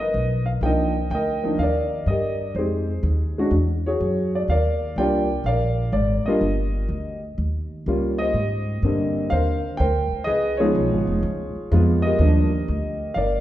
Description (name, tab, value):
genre	jazz piano trio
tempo	124 BPM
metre	4/4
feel	swing 67% on 8ths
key	Eb major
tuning	A4 = 440 Hz
part	warm grand piano	melody	0.0-13.4 s	D3 to G5	-22 LUFS	equal	none
part	upright bass	bass	0.0-13.4 s	F1 to Ab2	-23 LUFS	equal	none
room	wet recital hall reverb, RT60 1.5 s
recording	recorded in a church or concert hall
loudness	-20 LUFS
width	side -13 dB against mid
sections	0.0-8.3 A section; 8.3-13.4 B section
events	none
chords	0.0 Gaug; 0.6 Cm11; 2.6 Fm9; 3.5 E69; 4.5 Ebmaj9; 7.4 Eb9; 8.3 Abmaj9#11; 10.3 Db9; 12.2 Ebmaj9